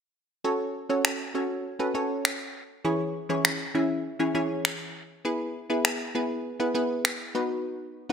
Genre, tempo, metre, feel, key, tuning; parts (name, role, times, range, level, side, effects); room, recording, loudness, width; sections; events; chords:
dance-pop; 100 BPM; 4/4; straight; F# dorian; A4 = 439 Hz
hollow square pluck; accompaniment; 0.4-8.1 s; E3 to E5; -27 LUFS; equal; chorus, phaser
electronic finger snaps; drums; 1.0-7.2 s; -26 LUFS; equal; gated reverb
moderate lush hall reverb, RT60 1.6 s; bright 1980s-style digital production; -26 LUFS; side -8 dB against mid
0.4-8.1 A section
0.4 F#m; 2.8 C#m/E; 5.2 E; 7.3 B